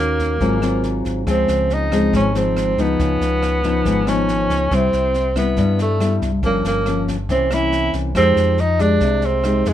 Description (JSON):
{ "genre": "bossa nova", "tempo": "140 BPM", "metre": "4/4", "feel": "straight", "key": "unclear", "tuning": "A4 = 440 Hz", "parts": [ { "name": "warm tenor saxophone", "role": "melody", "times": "0.0-9.7 s", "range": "Ab3 to E4", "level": "-20 LUFS", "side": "right 2 dB", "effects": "none" }, { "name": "nylon-string guitar", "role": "accompaniment", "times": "0.0-9.7 s", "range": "G2 to G4", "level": "-19 LUFS", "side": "left 2 dB", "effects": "none" }, { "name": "fingered electric bass", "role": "bass", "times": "0.0-9.7 s", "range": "G1 to G2", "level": "-22 LUFS", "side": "equal", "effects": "none" }, { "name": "jazz brush drum kit", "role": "drums", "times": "0.2-9.7 s", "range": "kick drum, rim click, snare drum", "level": "-28 LUFS", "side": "right 1 dB", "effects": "none" } ], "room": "light reverb", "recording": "minimal, uncompressed stereo recording", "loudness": "-16 LUFS", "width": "side -11 dB against mid", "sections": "0.0-9.7 A section", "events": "none", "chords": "0.4 Ab13; 1.3 Dbmaj7; 3.0 Db9; 4.7 Cmaj7; 6.4 Gm7b5; 7.3 C7b9; 8.2 Fm9" }